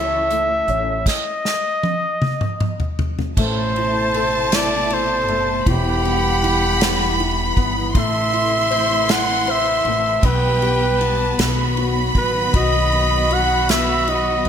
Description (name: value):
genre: six-eight pop ballad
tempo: 52 BPM (dotted quarters)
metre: 6/8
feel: straight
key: unclear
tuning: A4 = 440 Hz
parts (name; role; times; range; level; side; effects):
- warm flugelhorn; melody; 0.0-14.5 s; G4 to F#5; -20 LUFS; equal; none
- warm baby grand piano; accompaniment; 0.0-14.5 s; C#3 to C5; -26 LUFS; left 4 dB; ensemble chorus
- warm studio string section; sustained chords; 0.0-14.5 s; B2 to F#5; -27 LUFS; equal; none
- upright bass; bass; 0.0-14.5 s; E1 to C#2; -24 LUFS; equal; none
- unplugged drum kit; drums; 0.3-14.5 s; crash cymbal, hi-hat, kick drum, ride cymbal, snare drum, toms; -23 LUFS; equal; gated reverb
- clear studio violin section; second line; 3.4-14.5 s; G5 to C6; -23 LUFS; right 1 dB; none
room: moderate lush hall reverb, RT60 2.0 s, studio reverb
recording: bright 1980s-style digital production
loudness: -16 LUFS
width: side -8 dB against mid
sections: 0.0-3.4 A section; 3.4-14.5 B section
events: drum fill 1.1-3.4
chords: 0.0 A/C#; 1.1 N.C.; 3.4 Amadd9; 5.7 Emadd9; 8.0 Am; 10.2 Em/B; 11.4 B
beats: | 1.06 2.21 | 3.37 4.52 | 5.67 6.81 | 7.95 9.09 | 10.24 11.38 | 12.54 13.69